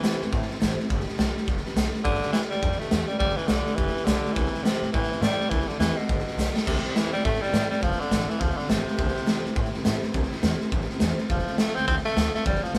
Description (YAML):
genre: rockabilly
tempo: 208 BPM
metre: 4/4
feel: swing 61% on 8ths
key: C major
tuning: A4 = 439 Hz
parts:
  - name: raspy tenor saxophone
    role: melody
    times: 0.0-12.8 s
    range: B2 to C4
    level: -30 LUFS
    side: equal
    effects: none
  - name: picked steel-string acoustic guitar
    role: accompaniment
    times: 0.0-12.8 s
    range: C3 to C5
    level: -37 LUFS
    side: equal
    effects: none
  - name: upright bass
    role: bass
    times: 0.0-12.8 s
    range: F1 to A2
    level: -33 LUFS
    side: equal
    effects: none
  - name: raw garage drum kit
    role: drums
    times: 0.0-12.8 s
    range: crash cymbal, hi-hat, kick drum, snare drum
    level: -28 LUFS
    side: equal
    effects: none
room: light reverb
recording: band playing live in one room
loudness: -25 LUFS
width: mono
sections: 0.0-6.7 A section; 6.7-12.8 A section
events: drum fill 6.4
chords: 0.0 C; 0.9 G; 4.4 C; 6.1 G; 6.7 C; 7.8 F; 9.0 C; 11.3 F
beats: 0.03 0.32 0.61 | 0.90 1.18 1.47 1.76 | 2.05 2.34 2.62 2.91 | 3.20 3.49 3.78 4.07 | 4.36 4.64 4.93 5.22 | 5.51 5.80 6.09 6.38 | 6.67 6.96 7.25 7.54 | 7.83 8.11 8.40 8.69 | 8.98 9.27 9.56 9.85 | 10.14 10.43 10.72 11.01 | 11.30 11.59 11.87 12.16 | 12.45 12.74